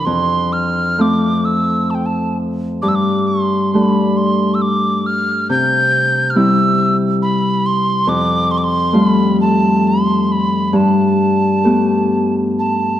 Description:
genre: celtic folk, Celtic slow air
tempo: 61-71 BPM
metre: 3/4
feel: rubato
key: G mixolydian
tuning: A4 = 439 Hz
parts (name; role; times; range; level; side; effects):
- hollow wooden whistle; melody; 0.0-13.0 s; G5 to G6; -18 LUFS; right 2 dB; none
- Celtic harp; accompaniment; 0.0-13.0 s; C2 to G4; -15 LUFS; left 1 dB; none
room: moderate scoring stage reverb, RT60 1.8 s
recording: dark, warm production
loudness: -13 LUFS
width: side -11 dB against mid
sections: 0.0-13.0 A section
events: none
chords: 0.1 F; 2.8 Gsus2; 5.5 C; 8.1 Fadd9; 10.7 Gadd9

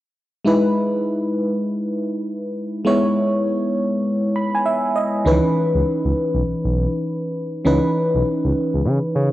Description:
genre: R&B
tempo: 100 BPM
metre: 4/4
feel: swing 63% on 16ths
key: E major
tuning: A4 = 440 Hz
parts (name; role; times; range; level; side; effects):
- FM electric piano; accompaniment; 0.4-9.3 s; D#3 to B5; -18 LUFS; equal; chorus, cassette tape
- smooth gliding synth bass; bass; 5.3-9.3 s; B1 to C#3; -20 LUFS; equal; none
room: wet spring reverb, RT60 2.3 s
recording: home recording on cassette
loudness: -18 LUFS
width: side -15 dB against mid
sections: 0.5-9.3 A section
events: FM electric piano fill 4.1-5.3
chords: 0.5 Emaj7; 5.3 C#m9

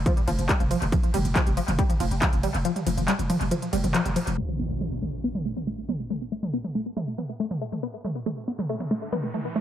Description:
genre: driving peak-time techno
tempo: 139 BPM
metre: 4/4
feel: straight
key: unclear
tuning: A4 = 440 Hz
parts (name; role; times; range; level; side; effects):
- growling 808-style bass; bass; 0.0-4.4 s; F1; -28 LUFS; equal; sidechain pumping, low-pass filter
- tight sequenced synth; riff; 0.1-9.6 s; F3 to B3; -28 LUFS; left 1 dB; chorus, tube saturation, sidechain pumping, analog delay
- electronic kick drum; drums; 0.1-2.3 s; none; -24 LUFS; equal; overdrive
- techno drum kit; drums; 0.1-9.4 s; handclaps, hi-hat, ride cymbal, toms; -30 LUFS; equal; overdrive, analog delay
- impact and riser; sound effects; 4.4-9.6 s; none; -35 LUFS; equal; none
room: light reverb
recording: echo-heavy mix, low-pass filter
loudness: -24 LUFS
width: side -11 dB against mid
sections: 0.0-4.4 A section; 4.4-9.6 B section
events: drop 0.0-4.4; kick drops out 2.6-4.4; band accent 3.9; impact 4.4-6.1; filter sweep on synth arpeggio sound 4.4-9.6; filter sweep 4.4-9.6; riser 8.3-9.6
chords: 0.0 N.C.; 4.4 Asus2

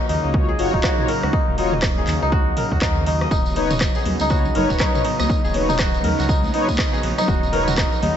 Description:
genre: afro house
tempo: 121 BPM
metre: 4/4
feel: swing 60% on 16ths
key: unclear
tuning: A4 = 440 Hz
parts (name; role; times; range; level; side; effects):
- warm analog pad; sustained chords; 0.0-8.2 s; Db3 to Eb4; -27 LUFS; right 2 dB; chorus, tremolo, sidechain pumping
- kora; arpeggios; 0.0-8.2 s; Eb4 to Eb5; -23 LUFS; left 1 dB; sidechain pumping, dub echo
- dark detuned saw bass; bass; 0.1-8.1 s; Eb1 to Eb2; -25 LUFS; equal; sidechain pumping
- house drum kit; drums; 0.1-8.1 s; handclaps, hi-hat, rim click, toms; -26 LUFS; equal; overdrive
- mellow synth brass; stabs; 0.3-7.7 s; D#4 to Db5; -26 LUFS; left 2 dB; chorus, sidechain pumping, dub echo
- electronic kick drum; drums; 0.3-7.9 s; none; -21 LUFS; equal; overdrive
- tambourine; percussion; 3.3-8.0 s; none; -33 LUFS; right 5 dB; none
- congas; percussion; 3.6-8.1 s; none; -29 LUFS; left 1 dB; none
room: light reverb, digital ambience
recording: nothing above 7.9 kHz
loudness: -17 LUFS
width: side -9 dB against mid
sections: 0.0-8.2 A section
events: none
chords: 0.0 Ebm7; 3.3 Badd9/D#

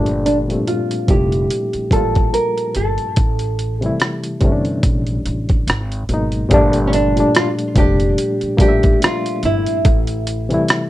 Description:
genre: lo-fi hip hop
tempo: 72 BPM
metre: 4/4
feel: swing 57% on 16ths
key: G dorian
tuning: A4 = 440 Hz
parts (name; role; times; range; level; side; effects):
- barky reed electric piano; accompaniment; 0.0-10.9 s; Bb2 to E5; -19 LUFS; left 1 dB; overdrive, fast tremolo, cassette tape, low-pass filter
- upright bass; bass; 0.0-10.6 s; F1 to Bb1; -21 LUFS; equal; none
- dusty soul sampler-style drum kit; drums; 0.1-10.9 s; hi-hat, kick drum, rim click; -16 LUFS; equal; overdrive
- nylon-string guitar; melody; 0.3-10.9 s; C#4 to Bb4; -20 LUFS; right 1 dB; low-pass filter, tape echo
room: light reverb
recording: none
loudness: -14 LUFS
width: side -15 dB against mid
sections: 0.0-6.5 A section; 6.5-10.9 B section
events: filter sweep 0.0-6.5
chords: 0.0 Gm9; 3.2 Am7; 5.7 Abm9; 6.5 Gm9; 9.8 Am7

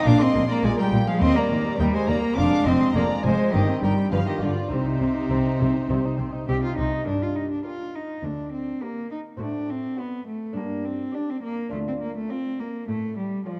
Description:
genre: classical, baroque-style concerto movement with solo episodes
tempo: 103 BPM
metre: 4/4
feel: straight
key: C minor, G minor from 7.1 s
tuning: A4 = 440 Hz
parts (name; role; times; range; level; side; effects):
- rich cello; melody; 0.0-13.6 s; C3 to G4; -27 LUFS; equal; none
- rich chamber violin section; melody; 0.0-13.6 s; C5 to D6; -36 LUFS; equal; none
- rich chamber violin section; second line; 0.0-13.6 s; Eb4 to F5; -32 LUFS; equal; none
- dark chamber viola section; accompaniment; 0.0-13.6 s; F3 to G4; -35 LUFS; equal; none
- lute; accompaniment; 0.0-13.6 s; D2 to Ab4; -35 LUFS; equal; none
- rich chamber double bass section; bass; 0.1-6.9 s; F1 to Eb2; -30 LUFS; equal; none
- warm chamber cello section; bass; 0.1-13.3 s; D2 to C3; -31 LUFS; equal; none
room: moderate concert hall reverb, RT60 1.9 s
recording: dark, warm production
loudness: -24 LUFS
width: mono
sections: 0.0-7.1 A section; 7.1-13.6 B section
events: none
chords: 0.1 Bb5; 1.2 Eb; 2.4 Ddim/F; 3.5 Cm/G; 4.1 G7; 4.7 Cm; 7.1 Gm; 9.4 F#dim/A; 10.6 G5; 11.7 Dm

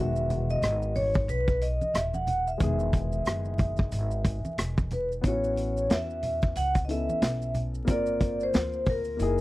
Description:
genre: hip hop, jazz-hop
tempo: 91 BPM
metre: 4/4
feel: swing 59% on 16ths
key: E major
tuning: A4 = 440 Hz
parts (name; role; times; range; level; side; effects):
- vibraphone with medium mallets; melody; 0.0-9.4 s; Bb4 to F#5; -30 LUFS; equal; none
- dark upright piano; accompaniment; 0.0-9.4 s; D#3 to Bb4; -34 LUFS; left 3 dB; none
- upright bass; bass; 0.0-9.4 s; D#1 to E2; -31 LUFS; equal; none
- maracas and congas; percussion; 0.2-9.4 s; none; -38 LUFS; right 2 dB; none
- vintage drum kit; drums; 0.3-9.4 s; hi-hat, kick drum, rim click, snare drum; -26 LUFS; equal; none
room: little or no reverb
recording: dry, close 1970s-style studio recording, vinyl crackle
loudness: -25 LUFS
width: side -18 dB against mid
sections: 0.0-5.2 A section; 5.2-9.4 B section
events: none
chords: 0.0 Emaj9; 5.2 A6; 7.9 Gm7

